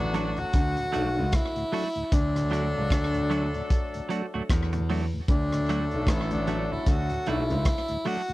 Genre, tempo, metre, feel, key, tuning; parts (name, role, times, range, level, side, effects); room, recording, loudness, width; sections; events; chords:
roots reggae; 76 BPM; 4/4; swing 60% on 16ths; D major; A4 = 439 Hz
breathy tenor saxophone; melody; 0.0-8.3 s; D4 to F#4; -31 LUFS; equal; tape echo
clear horn section; second line; 0.0-8.0 s; D3 to A4; -35 LUFS; left 2 dB; tape echo
mellow tonewheel organ; accompaniment; 0.0-8.3 s; D2 to D4; -33 LUFS; left 1 dB; slow rotary speaker
clear concert grand piano; bass; 0.0-7.6 s; A1 to E2; -28 LUFS; equal
semi-hollow electric guitar; accompaniment; 0.1-8.2 s; F#3 to F#4; -33 LUFS; right 5 dB; wide subtle chorus, tape echo
crunchy breakbeat drum kit; drums; 0.1-8.3 s; hi-hat, kick drum, rim click; -26 LUFS; equal
little or no reverb; dry, close 1970s-style studio recording; -24 LUFS; side -18 dB against mid
0.0-8.3 A section
0.0 D